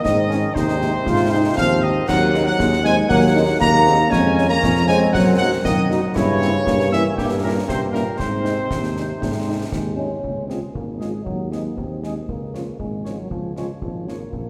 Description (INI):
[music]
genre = military-style march for wind band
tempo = 118 BPM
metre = 2/4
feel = straight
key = Db major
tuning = A4 = 440 Hz
[part]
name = clear trumpet section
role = melody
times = 0.0-14.2 s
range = G4 to Bb5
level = -25 LUFS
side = equal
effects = none
[part]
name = warm euphonium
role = second line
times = 0.0-14.5 s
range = G2 to Db4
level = -26 LUFS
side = equal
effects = none
[part]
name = warm trombone section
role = sustained chords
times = 0.0-10.0 s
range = Ab3 to F4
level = -26 LUFS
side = equal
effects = none
[part]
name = mellow tuba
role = bass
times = 0.0-14.5 s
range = Ab1 to Ab2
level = -24 LUFS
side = equal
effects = none
[part]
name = concert snare drum, concert bass drum and clash cymbals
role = drums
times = 0.1-14.5 s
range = none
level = -31 LUFS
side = equal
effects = none
[part]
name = mellow French horn section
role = accompaniment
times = 0.3-14.2 s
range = F3 to Gb4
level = -32 LUFS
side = equal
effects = none
[sound]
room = wet church reverb, RT60 2.5 s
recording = recorded in a church or concert hall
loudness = -19 LUFS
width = mono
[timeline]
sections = 0.0-10.2 A section; 10.2-14.5 B section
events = none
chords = 0.0 Ab7/Eb; 4.1 Db/F; 5.1 Ebm/Gb; 6.2 Gdim7; 8.2 Ab; 10.2 Db; 11.3 Ab/Eb; 12.3 Db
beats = | 0.04 0.55 | 1.06 1.57 | 2.08 2.59 | 3.10 3.61 | 4.12 4.63 | 5.14 5.65 | 6.16 6.67 | 7.18 7.69 | 8.20 8.71 | 9.22 9.73 | 10.24 10.75 | 11.26 11.77 | 12.28 12.79 | 13.31 13.82 | 14.33